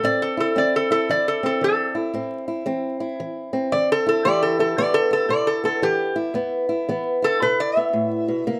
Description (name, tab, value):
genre	acoustic country blues, solo or duo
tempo	114 BPM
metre	4/4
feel	swing 64% on 8ths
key	E minor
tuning	A4 = 445 Hz
part	metal-body resonator slide guitar	melody	0.0-8.6 s	G4 to E5	-22 LUFS	equal	none
part	fingerpicked old ladder-braced acoustic guitar	accompaniment	0.0-8.6 s	E2 to G4	-27 LUFS	equal	none
room	light reverb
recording	vinyl crackle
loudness	-22 LUFS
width	mono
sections	0.0-8.6 A section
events	resonator guitar played with a steel bar solo 0.0-8.6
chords	0.0 Am; 4.2 Em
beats	| 0.03 0.56 1.08 1.61 | 2.13 2.66 3.19 3.71 | 4.24 4.77 5.29 5.82 | 6.35 6.88 7.40 7.93 | 8.46